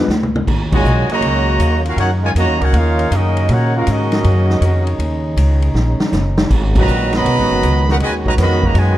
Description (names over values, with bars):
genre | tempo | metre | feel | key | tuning
jazz, big band swing | 159 BPM | 4/4 | swing 66% on 8ths | unclear | A4 = 440 Hz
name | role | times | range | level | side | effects
upright bass | bass | 0.0-9.0 s | Gb1 to Bb2 | -15 LUFS | equal | none
swinging big-band drum kit | drums | 0.1-8.9 s | crash cymbal, hi-hat, kick drum, ride cymbal, snare drum, toms | -21 LUFS | equal | none
clear trombone section | sustained chords | 0.5-9.0 s | Db3 to Gb4 | -25 LUFS | equal | none
clear trumpet section | melody | 0.7-9.0 s | Db4 to Cb6 | -19 LUFS | equal | none
warm trombone section | second line | 0.7-9.0 s | Bb2 to Gb4 | -21 LUFS | right 2 dB | none
room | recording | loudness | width
light reverb | dark, warm production | -13 LUFS | side -14 dB against mid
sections
0.5-9.0 A section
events
drum fill 0.0-0.5, 5.7-6.5; band accent 0.7, 6.7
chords
0.5 Abm9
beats
0.10 | 0.47 0.85 1.23 1.60 | 1.98 2.35 2.73 3.11 | 3.48 3.86 4.24 4.62 | 4.99 5.37 5.75 6.12 | 6.50 6.88 7.25 7.63 | 8.01 8.38 8.76